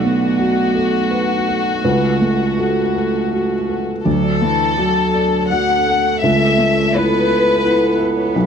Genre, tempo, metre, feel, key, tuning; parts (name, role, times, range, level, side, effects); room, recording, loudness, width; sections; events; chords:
neoclassical piano and strings; 83 BPM; 3/4; rubato; D major; A4 = 440 Hz
warm chamber violin section; melody; 0.0-8.4 s; F#4 to F#5; -18 LUFS; left 4 dB
warm cello; second line; 0.0-8.5 s; E3 to B3; -22 LUFS; right 6 dB
felt-muted upright piano; accompaniment; 0.0-8.5 s; B1 to D5; -17 LUFS; equal
concert harp; arpeggios; 4.1-8.5 s; D4 to A5; -23 LUFS; left 1 dB; slapback echo
light reverb; worn, warbling old tape, cassette tape, warbly pitch drift; -14 LUFS; side -7 dB against mid
0.0-4.1 A section; 4.1-8.5 A section
0.0 Bm7; 1.8 F#m/C#; 4.1 D; 6.2 Aadd9/C#